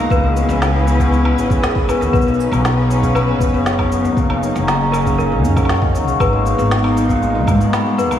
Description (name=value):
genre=folktronica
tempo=118 BPM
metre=4/4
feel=straight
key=B major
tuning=A4 = 438 Hz
part: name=worn celesta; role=second line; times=0.0-8.2 s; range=A#4 to B5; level=-23 LUFS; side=left 1 dB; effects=tape echo
part: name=muted string quartet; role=sustained chords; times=0.0-8.2 s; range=F#3 to B4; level=-24 LUFS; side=equal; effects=none
part: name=cimbalom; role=arpeggios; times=0.0-8.2 s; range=A#2 to C#4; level=-18 LUFS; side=left 2 dB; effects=tape echo
part: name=upright bass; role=bass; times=0.0-8.2 s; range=F#1 to G#2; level=-18 LUFS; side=equal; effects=tube saturation
part: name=electronic kick drum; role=drums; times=0.1-7.6 s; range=none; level=-18 LUFS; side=equal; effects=overdrive
part: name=electronic shaker, snare drum and woodblock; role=drums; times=0.1-8.2 s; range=none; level=-25 LUFS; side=equal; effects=overdrive
room=moderate lush hall reverb, RT60 1.7 s, studio reverb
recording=dreamy mix soaked in reverb, vinyl crackle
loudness=-13 LUFS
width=side -10 dB against mid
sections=0.0-8.2 A section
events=none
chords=0.1 C#m7; 2.1 Badd9; 4.2 F#6; 6.2 G#madd9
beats=| 0.10 0.61 1.12 1.63 | 2.14 2.65 3.15 3.66 | 4.17 4.68 5.19 5.70 | 6.21 6.71 7.22 7.73